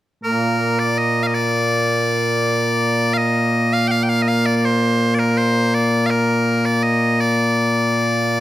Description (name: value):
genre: scottish traditional, Scottish pipe music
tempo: 82 BPM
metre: 2/4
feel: straight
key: Bb major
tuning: A4 = 440 Hz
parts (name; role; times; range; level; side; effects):
- loud bright bagpipes; solo; 0.2-8.4 s; Bb2 to G5; -15 LUFS; equal; none
room: light reverb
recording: close, detailed microphones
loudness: -15 LUFS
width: side -14 dB against mid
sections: 0.2-8.4 A section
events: none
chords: none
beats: | 0.23 0.96 | 1.69 2.42 | 3.16 3.89 | 4.62 5.35 | 6.08 6.82 | 7.55 8.28